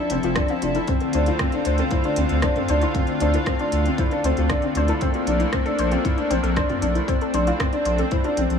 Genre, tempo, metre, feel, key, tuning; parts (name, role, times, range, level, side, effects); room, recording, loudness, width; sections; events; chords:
piano and strings electronica; 116 BPM; 4/4; straight; A4 = 441 Hz
lush unison pad; sustained chords; 0.0-8.6 s; D3 to A4; -27 LUFS; equal; chorus
felt-muted upright piano; riff; 0.0-8.6 s; C4 to E4; -23 LUFS; left 2 dB; digital delay
warbly dusty pluck; arpeggios; 0.1-8.3 s; F4 to F5; -30 LUFS; left 4 dB; chorus, sidechain pumping, digital delay
round analog bass; bass; 0.1-8.6 s; F1 to D2; -23 LUFS; equal; sidechain pumping
organic electronic drum kit; drums; 0.1-8.6 s; hi-hat, rim click, toms; -31 LUFS; right 1 dB
electronic kick drum; drums; 0.4-8.2 s; -24 LUFS; equal
light reverb, digital ambience; -19 LUFS; side -7 dB against mid
0.0-8.6 A section
0.0 Fmaj7; 0.9 Dm7; 5.0 Bbmaj7